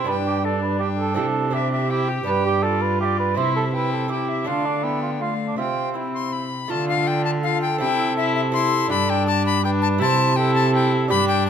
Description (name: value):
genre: classical, renaissance-style consort dance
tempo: 164 BPM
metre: 3/4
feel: straight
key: unclear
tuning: A4 = 440 Hz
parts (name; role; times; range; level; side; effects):
- bright tenor recorder; melody; 0.0-11.5 s; D5 to C6; -25 LUFS; left 7 dB; none
- dark cor anglais; second line; 0.0-11.5 s; D4 to C5; -25 LUFS; right 6 dB; none
- lute; accompaniment; 0.0-11.5 s; G2 to E5; -28 LUFS; right 5 dB; none
- warm viola; accompaniment; 0.0-11.5 s; A3 to G4; -27 LUFS; left 5 dB; none
- dark cello; bass; 0.0-11.5 s; G2 to D3; -25 LUFS; right 1 dB; none
room: moderate recital hall reverb, RT60 1.5 s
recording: none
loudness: -19 LUFS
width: side -8 dB against mid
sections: 0.0-6.7 A section; 6.7-11.5 A section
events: none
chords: 0.1 G; 1.2 C; 2.3 G; 3.4 C; 4.5 Dm; 5.6 C; 6.7 Dm; 7.8 C; 8.9 G; 10.0 C